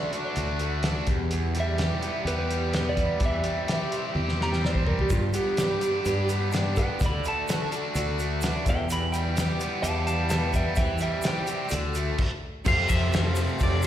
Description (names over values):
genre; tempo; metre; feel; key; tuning
folk rock and heartland rock; 127 BPM; 4/4; straight; unclear; A4 = 439 Hz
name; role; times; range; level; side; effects
electric slide guitar; second line; 0.0-11.7 s; F4 to B5; -30 LUFS; right 2 dB; slapback echo
picked plugged-in twelve-string acoustic guitar; accompaniment; 0.0-13.9 s; E2 to G4; -35 LUFS; left 3 dB; analog chorus, slapback echo
crunchy overdriven guitar; riff; 0.0-13.9 s; E2 to G4; -30 LUFS; equal; slapback echo
cloth-damped thuddy drum kit; drums; 0.1-13.9 s; crash cymbal, hi-hat, kick drum, ride cymbal, snare drum, toms; -28 LUFS; equal; none
fingered electric bass; bass; 0.4-13.9 s; D2 to G2; -27 LUFS; equal; none
warm upright piano; accompaniment; 5.1-13.9 s; F4 to E5; -38 LUFS; right 1 dB; slapback echo
egg shaker; percussion; 5.1-13.9 s; none; -44 LUFS; right 3 dB; none
clean electric guitar; melody; 12.7-13.8 s; D5 to F5; -28 LUFS; equal; wide subtle chorus, slapback echo
room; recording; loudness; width
light reverb, studio ambience; live gig heard through the venue's PA, recital hall reverb; -24 LUFS; side -11 dB against mid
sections
0.0-12.7 A section; 12.7-13.9 B section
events
electric slide guitar solo 0.0-12.7; drum fill 4.2-5.1; stop 12.2-12.7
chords
0.0 D; 1.1 Em; 3.2 C/E; 5.1 G; 7.0 D; 8.7 Em; 10.8 C/E; 11.7 D; 12.7 Fadd9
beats
0.37 0.84 | 1.32 1.79 2.26 2.74 | 3.21 3.69 4.16 4.63 | 5.11 5.58 6.05 6.53 | 7.00 7.47 7.94 8.42 | 8.89 9.36 9.83 10.31 | 10.78 11.25 11.72 12.19 | 12.67 13.14 13.61